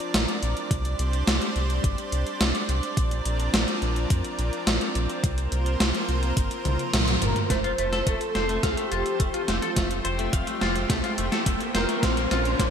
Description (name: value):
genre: synthwave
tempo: 106 BPM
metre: 4/4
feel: straight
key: unclear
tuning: A4 = 440 Hz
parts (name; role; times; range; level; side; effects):
- lush unison pad; sustained chords; 0.0-12.7 s; D3 to D5; -30 LUFS; right 1 dB; chorus, sidechain pumping
- gated 80s digital drum machine; drums; 0.0-12.7 s; hi-hat, snare drum, toms; -27 LUFS; equal; gated reverb, gated reverb snare, overdrive
- round analog bass; bass; 0.1-12.7 s; F1 to F2; -27 LUFS; equal; none
- electronic kick drum; drums; 0.7-12.7 s; none; -26 LUFS; equal; overdrive
- expressive portamento lead; melody; 7.2-12.7 s; F4 to C5; -29 LUFS; equal; ensemble chorus, digital delay
- clean electric guitar; arpeggios; 7.5-12.7 s; A3 to F5; -30 LUFS; left 3 dB; lush chorus, digital delay
- riser; sound effects; 9.1-12.7 s; none; -34 LUFS; right 1 dB; none
room: moderate lush hall reverb, RT60 2.2 s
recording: bright 1980s-style digital production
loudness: -22 LUFS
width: side -8 dB against mid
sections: 0.0-7.5 A section; 7.5-12.7 B section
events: drum fill 6.7-7.5, 7.5-12.7; kick drops out 6.9-7.5; band accent 6.9; riser 9.1-12.7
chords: 0.0 Bbadd9; 0.7 Csus2; 3.0 Bbadd9; 5.2 Fsus4/C; 7.5 F; 12.0 Bb